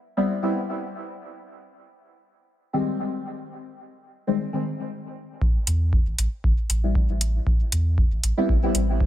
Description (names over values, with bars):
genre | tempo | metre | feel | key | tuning
dub techno | 117 BPM | 4/4 | swing 54% on 16ths | A minor | A4 = 440 Hz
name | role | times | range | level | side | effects
deep mellow chord stab | stabs | 0.2-8.8 s | D#3 to E4 | -26 LUFS | left 2 dB | chorus, phaser, sidechain pumping, dub echo
soft dub sub bass | bass | 5.4-9.1 s | G1 to E2 | -24 LUFS | equal | tube saturation, sidechain pumping
electronic kick drum | drums | 5.4-9.1 s | none | -22 LUFS | equal | overdrive
electronic hi-hat | drums | 5.7-8.9 s | none | -24 LUFS | equal | overdrive
room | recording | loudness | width
light reverb | none | -21 LUFS | side -12 dB against mid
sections
0.0-5.4 A section; 5.4-9.1 B section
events
none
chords
0.0 Gadd11; 1.3 D#add11; 5.4 Am9